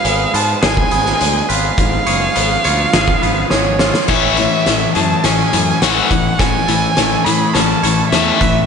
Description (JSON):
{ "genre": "post-rock", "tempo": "104 BPM", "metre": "4/4", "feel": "straight", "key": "A major", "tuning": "A4 = 440 Hz", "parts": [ { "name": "rich violin", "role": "melody", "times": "0.0-8.7 s", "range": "C#5 to B5", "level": "-18 LUFS", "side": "right 3 dB", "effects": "slapback echo, analog delay" }, { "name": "granular cloud pad", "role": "sustained chords", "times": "0.0-8.7 s", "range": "C#3 to C#5", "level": "-27 LUFS", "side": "right 1 dB", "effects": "none" }, { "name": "twangy electric guitar", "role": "arpeggios", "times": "0.0-8.7 s", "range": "G#2 to G#4", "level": "-24 LUFS", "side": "left 1 dB", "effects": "slapback echo, analog delay" }, { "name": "twangy electric guitar", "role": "arpeggios", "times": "0.0-8.7 s", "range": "G#4 to E#5", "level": "-25 LUFS", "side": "right 6 dB", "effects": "warbly pitch drift, slapback echo, analog delay" }, { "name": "fuzz fingered electric bass", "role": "bass", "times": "0.0-8.7 s", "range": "F#1 to A2", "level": "-21 LUFS", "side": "equal", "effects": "overdrive" }, { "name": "oversized low-tuned drum kit", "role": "drums", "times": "0.0-8.5 s", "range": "crash cymbal, hi-hat, kick drum, snare drum", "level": "-17 LUFS", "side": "equal", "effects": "none" }, { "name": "tight distorted guitar", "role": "riff", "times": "4.1-8.7 s", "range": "A2 to A3", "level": "-16 LUFS", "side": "left 9 dB", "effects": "distortion" } ], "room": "moderate lush hall reverb, RT60 2.6 s", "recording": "big arena sound, nothing above 10.3 kHz", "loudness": "-12 LUFS", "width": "side -6 dB against mid", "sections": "0.0-4.1 A section; 4.1-8.7 B section", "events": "drum fill 3.5-4.1, 4.1-8.7; build-up 4.1-8.7", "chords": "0.0 C#7/G#; 4.1 Amaj7" }